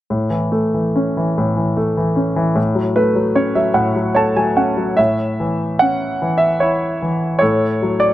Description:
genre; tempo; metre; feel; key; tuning
classical, lyrical solo piano; 74 BPM; 3/4; rubato; A major; A4 = 440 Hz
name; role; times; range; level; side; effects
clear concert grand piano; solo; 0.1-8.1 s; A2 to A5; -15 LUFS; equal; none
room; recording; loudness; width
moderate booth ambience, RT60 0.2 s; nothing above 10.6 kHz; -15 LUFS; side -14 dB against mid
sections
0.1-5.0 A section; 5.0-8.1 B section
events
grand piano fill 2.6-5.0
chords
0.1 A; 2.6 F#m/A; 5.0 A; 7.4 F#m/A

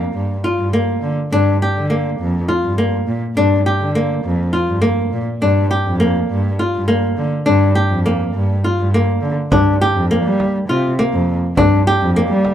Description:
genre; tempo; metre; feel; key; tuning
contemporary instrumental, chamber music in an uneven meter; 205 BPM (eighths); 7/8; straight; G minor; A4 = 440 Hz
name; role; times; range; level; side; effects
flamenco guitar; arpeggios; 0.0-12.5 s; Bb3 to G4; -17 LUFS; left 1 dB; none
dark cello; bass; 0.0-12.5 s; F2 to G3; -17 LUFS; equal; none
frame drum; percussion; 9.5-12.5 s; none; -21 LUFS; right 2 dB; none
room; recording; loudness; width
light reverb; dark, warm production; -14 LUFS; side -10 dB against mid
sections
0.0-9.5 A section; 9.5-12.5 B section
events
none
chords
0.0 Gm7

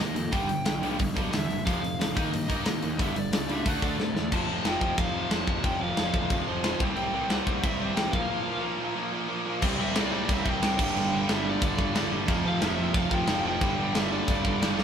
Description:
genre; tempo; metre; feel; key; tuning
punk rock; 181 BPM; 4/4; straight; unclear; A4 = 440 Hz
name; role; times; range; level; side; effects
lead guitar through a small cranked amp; melody; 0.0-14.8 s; C5 to A5; -33 LUFS; left 1 dB; overdrive
crunchy overdriven guitar; riff; 0.0-14.8 s; F2 to Eb4; -31 LUFS; right 6 dB; none
tight distorted guitar; riff; 0.0-14.8 s; F2 to Eb4; -33 LUFS; left 4 dB; distortion
fuzz picked electric bass; bass; 0.0-14.8 s; F1 to C3; -34 LUFS; equal; overdrive
tight metal drum kit; drums; 0.0-14.8 s; crash cymbal, hi-hat, kick drum, snare drum; -29 LUFS; left 1 dB; none
high-gain distorted guitar; riff; 9.6-14.8 s; F2 to C4; -34 LUFS; equal; distortion
room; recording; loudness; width
moderate studio reverb, RT60 0.6 s; band playing live in one room; -24 LUFS; side -8 dB against mid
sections
0.0-4.3 A section; 4.3-9.6 B section; 9.6-14.8 C section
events
drum fill 4.0-4.3; break 8.3-9.6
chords
0.3 G; 1.7 F; 2.2 Eb; 3.0 G5; 3.7 D; 4.3 F; 6.8 C; 8.1 Bb5; 9.6 C5; 10.8 G5; 12.3 F5; 13.6 G5

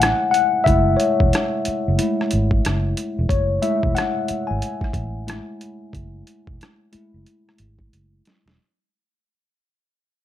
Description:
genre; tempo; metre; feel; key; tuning
R&B, neo-soul; 91 BPM; 4/4; swing 61% on 16ths; F# minor; A4 = 440 Hz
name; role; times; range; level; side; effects
tine electric piano; accompaniment; 0.0-8.6 s; G#3 to G#5; -20 LUFS; left 3 dB; analog chorus, plate reverb
vintage muted fingered electric bass; bass; 0.0-8.6 s; E1 to A1; -22 LUFS; right 1 dB; none
boom bap sampler-style drum kit; drums; 0.0-8.6 s; hi-hat, kick drum, rim click, snare drum; -22 LUFS; right 1 dB; none
room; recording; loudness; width
moderate studio reverb, RT60 0.7 s; none; -18 LUFS; side -11 dB against mid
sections
0.0-8.6 A section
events
fade-out 0.0-8.6; tine electric piano solo 0.0-8.6; drum fill 7.9-8.6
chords
0.0 F#m9

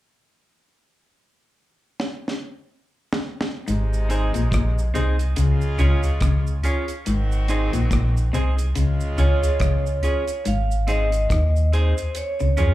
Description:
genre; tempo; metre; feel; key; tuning
roots reggae; 71 BPM; 4/4; swing 58% on 16ths; unclear; A4 = 440 Hz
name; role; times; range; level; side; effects
deep reggae drum kit; drums; 2.0-12.7 s; hi-hat, kick drum, rim click, snare drum; -27 LUFS; equal; none
warm horn section; second line; 3.7-10.0 s; C3 to Gb4; -32 LUFS; right 1 dB; tape echo, slapback echo
electric guitar at the edge of break-up; riff; 3.7-12.7 s; Ab2 to F3; -26 LUFS; left 3 dB; slapback echo
warm sub bass; bass; 3.7-12.7 s; Ab1 to F2; -20 LUFS; equal; none
cabasa; percussion; 3.7-12.7 s; none; -41 LUFS; right 8 dB; none
clean electric guitar; accompaniment; 4.1-12.7 s; C4 to Ab4; -30 LUFS; right 4 dB; spring reverb, tape echo, slapback echo
warm concert grand piano; stabs; 4.1-12.7 s; Eb4 to Db5; -31 LUFS; left 3 dB; slapback echo
vibraphone with medium mallets; melody; 9.2-12.7 s; C5 to F5; -26 LUFS; right 1 dB; tape echo, slapback echo
room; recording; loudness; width
little or no reverb; live gig heard through the venue's PA, club reverb; -19 LUFS; side -15 dB against mid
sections
0.3-3.7 A section; 3.7-10.5 B section; 10.5-12.7 C section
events
drum fill 2.0-3.7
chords
0.3 N.C.; 3.7 Ab; 5.4 Db; 7.1 Ab; 8.8 Db; 10.5 Ab; 12.2 Db

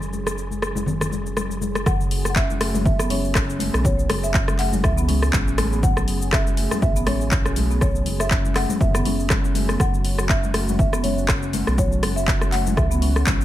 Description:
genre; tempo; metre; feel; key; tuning
afro house; 121 BPM; 4/4; swing 56% on 16ths; F# minor; A4 = 440 Hz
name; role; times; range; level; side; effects
warm analog pad; sustained chords; 0.0-13.4 s; F#3 to G#4; -33 LUFS; right 4 dB; chorus, vintage 12-bit sampler grit, sidechain pumping
round analog bass; bass; 0.0-13.4 s; F#1 to C#2; -25 LUFS; equal; tube saturation, sidechain pumping
house drum kit; drums; 0.0-13.4 s; handclaps, hi-hat, rim click, shaker; -25 LUFS; left 1 dB; small room reverb
congas; percussion; 0.1-13.4 s; none; -29 LUFS; left 3 dB; tape echo
marimba with medium mallets; melody; 1.9-13.4 s; C#5 to F#5; -29 LUFS; equal; tape echo
marimba with medium mallets; arpeggios; 1.9-13.4 s; F#3 to C#4; -28 LUFS; left 1 dB; sidechain pumping, tape echo
electronic kick drum; drums; 1.9-13.4 s; none; -22 LUFS; equal; small room reverb
room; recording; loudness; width
light reverb, studio reverb; echo-heavy mix; -18 LUFS; side -13 dB against mid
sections
0.0-1.9 A section; 1.9-13.4 B section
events
drop 1.9-13.4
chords
0.0 F#5; 1.9 F#m7

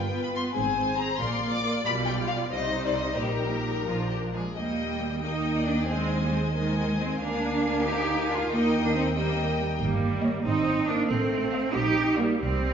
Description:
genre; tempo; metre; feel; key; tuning
quick classical-period movement for string orchestra; 92 BPM (dotted quarters); 6/8; straight; Eb major; A4 = 442 Hz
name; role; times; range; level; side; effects
clear chamber violin section; melody; 0.0-12.4 s; Bb4 to D6; -32 LUFS; left 5 dB; none
clear chamber violin section; second line; 0.0-12.3 s; F4 to F5; -33 LUFS; left 2 dB; none
rich studio viola section; accompaniment; 0.0-12.7 s; Eb3 to Ab4; -30 LUFS; right 1 dB; none
rich chamber double bass section; bass; 0.0-12.7 s; G1 to Eb2; -31 LUFS; right 2 dB; none
rich studio cello section; bass; 0.0-12.7 s; G2 to G4; -29 LUFS; right 3 dB; none
room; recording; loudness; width
wet recital hall reverb, RT60 1.7 s; heard from further back in the room, nothing above 7.5 kHz; -24 LUFS; side -7 dB against mid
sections
0.0-4.6 A section; 4.6-12.7 B section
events
none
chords
0.0 G7; 0.6 Ab; 1.2 Bb; 1.9 G7/B; 2.5 Cm; 3.2 Eb/Bb; 3.9 Bb; 4.6 Eb; 5.9 Ab/Eb; 7.2 Bb7/D; 8.5 Eb; 9.8 Eb7/G; 10.5 Ab; 11.1 F7/A; 11.8 Bb

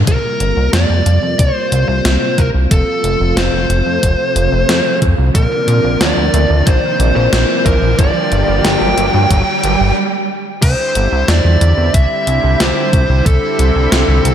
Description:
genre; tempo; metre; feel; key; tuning
synthwave; 91 BPM; 4/4; straight; unclear; A4 = 441 Hz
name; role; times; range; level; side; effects
lush unison pad; sustained chords; 0.0-14.3 s; C3 to G4; -19 LUFS; equal; chorus, sidechain pumping
chorused synth bass; bass; 0.0-14.3 s; F1 to Bb2; -14 LUFS; equal; none
fuzz lead guitar; melody; 0.1-14.3 s; A4 to G5; -17 LUFS; equal; distortion, tape echo
electronic kick drum; drums; 0.1-13.4 s; none; -14 LUFS; equal; none
gated 80s digital drum machine; drums; 0.1-14.3 s; crash cymbal, hi-hat, snare drum; -20 LUFS; equal; gated reverb, gated reverb snare
riser; sound effects; 2.3-10.0 s; none; -22 LUFS; right 2 dB; none
room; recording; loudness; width
moderate plate reverb, RT60 2.6 s; dreamy mix soaked in reverb; -11 LUFS; side -9 dB against mid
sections
0.1-10.6 A section; 10.6-14.3 B section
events
filter sweep on analog synth pad 0.1-10.6; riser 2.3-10.0; stop 10.0-10.6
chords
0.1 C7sus4; 2.7 F; 5.3 Bbadd9; 8.0 Gm; 10.6 Cadd9

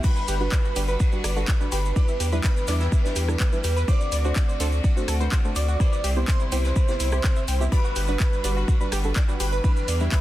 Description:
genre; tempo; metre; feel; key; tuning
progressive house; 125 BPM; 4/4; straight; G major; A4 = 440 Hz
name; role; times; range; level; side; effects
expressive synth lead; melody; 0.0-10.2 s; B4 to D5; -32 LUFS; right 1 dB; ensemble chorus, sidechain pumping, tape echo
glassy wavetable pluck; second line; 0.0-10.2 s; B5 to D6; -39 LUFS; left 3 dB; chorus, sidechain pumping, tape echo
bright studio string section; sustained chords; 0.0-10.2 s; C3 to B4; -35 LUFS; left 1 dB; sidechain pumping
tight sequenced synth; arpeggios; 0.0-10.2 s; E4 to G5; -35 LUFS; equal; chorus, vintage 12-bit sampler grit, sidechain pumping, tape echo
deep mellow chord stab; stabs; 0.0-10.1 s; G3 to E5; -32 LUFS; right 2 dB; chorus, sidechain pumping, tape echo
electronic kick drum; drums; 0.0-10.2 s; none; -21 LUFS; equal; studio reverb
house drum kit; drums; 0.0-10.2 s; crash cymbal, handclaps, hi-hat, rim click; -32 LUFS; left 1 dB; sidechain pumping on hats, studio reverb, sidechain pumping on cymbals
vintage brush drum kit; drums; 0.0-10.2 s; ride cymbal, snare drum; -38 LUFS; right 2 dB; sidechain pumping on cymbals, high-pass filter on cymbals, studio reverb, high-pass filter on snare, high-pass filter on room
maracas; percussion; 0.0-10.2 s; none; -39 LUFS; right 3 dB; none
round analog bass; bass; 0.3-10.1 s; G1 to E2; -24 LUFS; equal; sidechain pumping
room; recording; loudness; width
little or no reverb; dense, heavily limited modern master; -20 LUFS; side -15 dB against mid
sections
0.0-10.2 A section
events
none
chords
0.0 Gmaj7; 2.0 Em7; 3.9 D7; 5.8 Cmaj7; 7.7 Gmaj7; 9.6 Em7

